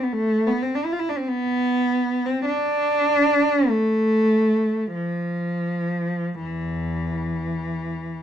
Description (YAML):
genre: classical, free, expressive piece for unaccompanied cello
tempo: 38-53 BPM (dotted quarters)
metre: 6/8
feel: rubato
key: unclear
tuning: A4 = 440 Hz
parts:
  - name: rich cello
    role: solo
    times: 0.0-8.2 s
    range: E2 to F4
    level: -20 LUFS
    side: equal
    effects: none
room: light reverb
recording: dark, warm production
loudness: -20 LUFS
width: side -9 dB against mid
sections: 0.0-8.2 A section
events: none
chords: none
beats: 0.15 | 1.30 2.45 | 3.67 4.96 | 6.41 7.91